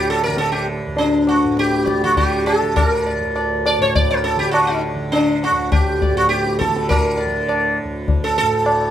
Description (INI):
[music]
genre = indian classical, Hindustani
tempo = 101 BPM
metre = 7/4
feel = straight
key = D major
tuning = A4 = 436 Hz
[part]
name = sitar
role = melody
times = 0.0-8.9 s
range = D4 to D5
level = -17 LUFS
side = equal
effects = none
[part]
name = tanpura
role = drone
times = 0.0-8.9 s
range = D2 to D3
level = -24 LUFS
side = right 1 dB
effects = none
[part]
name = tabla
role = percussion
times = 0.4-8.9 s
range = none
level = -21 LUFS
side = left 2 dB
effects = none
[sound]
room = light reverb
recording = close, detailed microphones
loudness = -15 LUFS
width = side -10 dB against mid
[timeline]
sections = 0.0-8.9 A section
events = none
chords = none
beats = 0.38 0.98 1.57 2.17 | 2.76 3.36 3.95 4.54 5.13 5.72 6.32 | 6.90 7.49 8.08 8.67